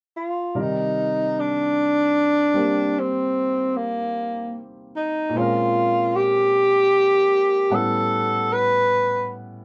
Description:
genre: jazz ballad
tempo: 50 BPM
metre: 4/4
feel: swing 66% on 8ths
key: C minor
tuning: A4 = 440 Hz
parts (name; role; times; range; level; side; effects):
- mellow tenor saxophone; melody; 0.2-9.3 s; Bb3 to B4; -21 LUFS; equal; none
- clear upright piano; accompaniment; 0.5-9.6 s; A2 to F#5; -30 LUFS; equal; none
room: moderate studio reverb, RT60 0.6 s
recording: dark, warm production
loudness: -21 LUFS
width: mono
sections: 0.5-9.6 A section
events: none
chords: 0.0 N.C.; 0.5 Cm9; 5.3 Bbm9; 7.7 A13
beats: | 0.55 1.75 2.94 4.14 | 5.33 6.51 7.70 8.88

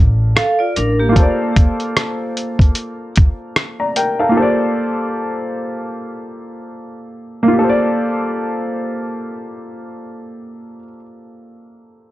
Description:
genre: lo-fi hip hop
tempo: 75 BPM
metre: 4/4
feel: swing 60% on 16ths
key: Bb major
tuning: A4 = 440 Hz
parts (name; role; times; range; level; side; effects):
- warm upright piano; accompaniment; 0.0-12.1 s; G3 to Bb5; -18 LUFS; equal; low-pass filter, plate reverb
- upright bass; bass; 0.0-1.1 s; A1; -16 LUFS; equal; none
- vibraphone with hard mallets; second line; 0.4-1.4 s; Bb3 to F5; -19 LUFS; right 1 dB; low-pass filter, tape echo, plate reverb
- lo-fi sampler-style drum kit; drums; 0.4-4.2 s; hi-hat, kick drum, rim click; -12 LUFS; equal; vintage 12-bit sampler grit
room: moderate studio reverb, RT60 0.6 s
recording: none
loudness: -14 LUFS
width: side -16 dB against mid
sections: 0.0-7.6 A section; 7.6-10.8 B section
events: none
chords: 0.0 Gm9; 1.2 Bbmaj9; 7.6 Bbmaj13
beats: 0.36 | 1.16 1.96 2.76 3.56 | 4.36 5.16 5.96 6.76 | 7.56 8.36 9.16 9.96

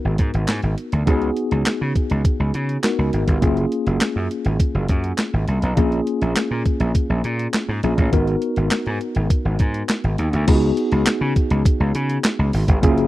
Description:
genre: early-eighties boogie funk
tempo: 102 BPM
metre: 4/4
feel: straight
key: unclear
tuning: A4 = 441 Hz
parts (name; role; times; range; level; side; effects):
- mellow tine electric piano; accompaniment; 0.0-13.1 s; A#3 to A#4; -23 LUFS; left 1 dB; medium stereo tremolo
- gritty slap bass; bass; 0.0-13.1 s; F#1 to C#3; -20 LUFS; equal; overdrive
- clean 12-bit digital drum machine; drums; 0.2-13.1 s; crash cymbal, handclaps, hi-hat, kick drum, snare drum; -19 LUFS; equal; none
room: digital ambience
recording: dry, close 1970s-style studio recording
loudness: -17 LUFS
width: side -16 dB against mid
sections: 0.0-10.5 A section; 10.5-13.1 B section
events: none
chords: 0.0 G#m7; 1.1 C#9sus4; 3.4 F#maj7; 5.8 A#m7; 8.1 G#m7; 10.5 C#9sus4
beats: 0.48 | 1.07 1.66 2.25 2.84 | 3.42 4.01 4.60 5.19 | 5.78 6.37 6.95 7.54 | 8.13 8.72 9.31 9.89 | 10.48 11.07 11.66 12.25 | 12.84

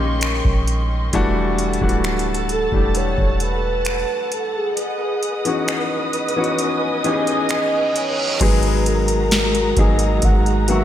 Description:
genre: contemporary R&B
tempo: 66 BPM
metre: 4/4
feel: straight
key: unclear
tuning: A4 = 439 Hz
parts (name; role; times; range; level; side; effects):
- mellow horn-like synth lead; melody; 0.0-10.8 s; G#4 to F#5; -24 LUFS; right 1 dB; chorus, analog delay
- warm baby grand piano; accompaniment; 0.0-10.8 s; D#3 to A#4; -22 LUFS; left 3 dB; none
- dark studio string section; sustained chords; 0.0-10.8 s; D#3 to D#6; -25 LUFS; right 1 dB; sidechain pumping
- soft 808-style bass; bass; 0.0-10.8 s; D1 to A#1; -21 LUFS; equal; none
- booming analog drum machine; drums; 0.2-10.8 s; crash cymbal, finger snaps, hi-hat, kick drum, snare drum; -22 LUFS; equal; none
- reverse cymbal; sound effects; 7.6-8.4 s; none; -29 LUFS; right 3 dB; none
room: wet lush hall reverb, RT60 2.5 s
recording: dreamy mix soaked in reverb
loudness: -16 LUFS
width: side -11 dB against mid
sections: 0.0-8.4 A section; 8.4-10.8 B section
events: kick muted 4.8-8.4; reverse cymbal 7.6-8.4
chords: 0.0 A#m11; 1.1 Em11; 4.8 C#m11; 8.4 G#m9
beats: 0.23 | 1.14 2.04 2.95 3.86 | 4.77 5.68 6.59 7.50 | 8.41 9.32 10.22

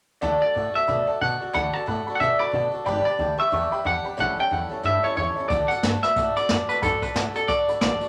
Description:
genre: rockabilly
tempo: 182 BPM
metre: 4/4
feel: swing 60% on 8ths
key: D major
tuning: A4 = 440 Hz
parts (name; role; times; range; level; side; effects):
- picked swing-style acoustic guitar; accompaniment; 0.2-8.1 s; A2 to B4; -31 LUFS; equal; none
- warm upright piano; accompaniment; 0.2-8.1 s; C#5 to C#6; -34 LUFS; equal; none
- upright bass; bass; 0.2-8.0 s; G1 to B2; -34 LUFS; equal; none
- semi-hollow electric guitar; melody; 0.4-8.1 s; A4 to A5; -26 LUFS; equal; none
- jazz brush drum kit; drums; 5.5-8.1 s; hi-hat, kick drum, snare drum; -29 LUFS; equal; none
room: moderate large studio reverb, RT60 0.8 s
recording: none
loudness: -23 LUFS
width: mono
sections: 0.2-5.5 A section; 5.5-8.1 B section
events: none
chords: 0.2 D; 2.9 G; 4.2 A7; 5.5 D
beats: | 0.22 0.55 0.88 1.22 | 1.54 1.88 2.21 2.54 | 2.87 3.20 3.53 3.86 | 4.19 4.52 4.84 5.17 | 5.50 5.83 6.16 6.49 | 6.82 7.15 7.48 7.81

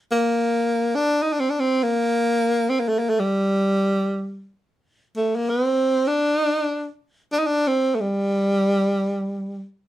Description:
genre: Arabic maqam ensemble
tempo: free time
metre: none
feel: none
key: G minor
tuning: A4 = 440 Hz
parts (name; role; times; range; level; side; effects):
- clear tenor saxophone; solo; 0.1-9.6 s; G3 to Eb4; -19 LUFS; equal; none
room: moderate studio ambience, RT60 0.5 s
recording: minimal, uncompressed stereo recording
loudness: -19 LUFS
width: side -14 dB against mid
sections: 0.0-9.9 A section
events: none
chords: none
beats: free time

